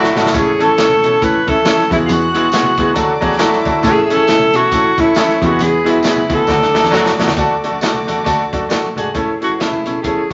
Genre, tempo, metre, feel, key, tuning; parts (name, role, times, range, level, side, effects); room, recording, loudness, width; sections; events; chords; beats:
uptempo 1960s-style soul; 136 BPM; 4/4; swing 59% on 8ths; A major; A4 = 441 Hz
breathy tenor saxophone; melody; 0.0-10.3 s; E4 to B4; -17 LUFS; equal
warm chamber string section; second line; 0.0-8.9 s; B4 to F#6; -28 LUFS; equal
warm horn section; second line; 0.0-0.3, 6.5-10.3 s; D3 to G#4; -27 LUFS; equal
clear baby grand piano; accompaniment; 0.0-10.3 s; E3 to A4; -18 LUFS; equal
crunchy breakbeat drum kit; drums; 0.0-10.3 s; hi-hat, kick drum, snare drum; -22 LUFS; equal
congas; percussion; 0.0-10.3 s; -35 LUFS; equal
dark cello; bass; 0.2-10.3 s; D2 to D3; -26 LUFS; equal
tambourine; percussion; 0.3-8.8 s; -37 LUFS; equal
wet studio reverb, RT60 0.9 s; nothing above 7.8 kHz; -14 LUFS; mono
0.0-7.4 A section; 7.4-9.1 B section; 9.1-10.3 C section
drum fill 0.0-0.3, 6.5-7.4; band accent 0.0-0.3, 5.6-7.4
0.3 A; 1.9 Eadd9; 3.0 D; 3.8 A; 5.4 Eadd9; 6.5 D; 9.1 A
| 0.33 0.77 1.21 1.65 | 2.09 2.52 2.96 3.40 | 3.84 4.28 4.72 5.16 | 5.60 6.04 6.49 6.93 | 7.37 7.81 8.26 8.70 | 9.14 9.59 10.04